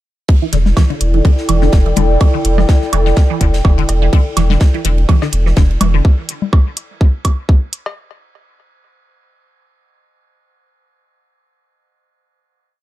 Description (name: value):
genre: minimal techno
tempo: 125 BPM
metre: 4/4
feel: swing 55% on 16ths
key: E minor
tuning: A4 = 441 Hz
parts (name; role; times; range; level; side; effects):
- electronic kick drum; drums; 0.3-7.6 s; none; -10 LUFS; equal; overdrive
- huge arena drum kit; drums; 0.3-5.9 s; ride cymbal, snare drum; -32 LUFS; right 2 dB; high-pass filter on cymbals, high-pass filter on snare, high-pass filter on room
- airy breathy pad; texture; 0.3-6.0 s; E4 to G5; -20 LUFS; equal; chorus, sidechain pumping
- resonant blip pluck; riff; 0.4-6.0 s; D3 to E3; -21 LUFS; equal; phaser, analog chorus, vintage 12-bit sampler grit, sidechain pumping, dub echo
- saturated sub bass; bass; 0.5-6.0 s; E1; -14 LUFS; equal; sidechain pumping
- electronic hi-hat; drums; 0.5-7.8 s; none; -21 LUFS; right 1 dB; overdrive
- congas, woodblock and cowbell; percussion; 0.7-7.9 s; none; -21 LUFS; left 2 dB; ping-pong delay
room: light reverb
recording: dark, warm production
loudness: -11 LUFS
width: side -15 dB against mid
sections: 0.3-8.0 groove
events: none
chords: 0.3 Em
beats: | 0.29 0.77 1.25 1.73 | 2.21 2.69 3.17 3.65 | 4.13 4.61 5.09 5.57 | 6.05 6.53 7.01 7.49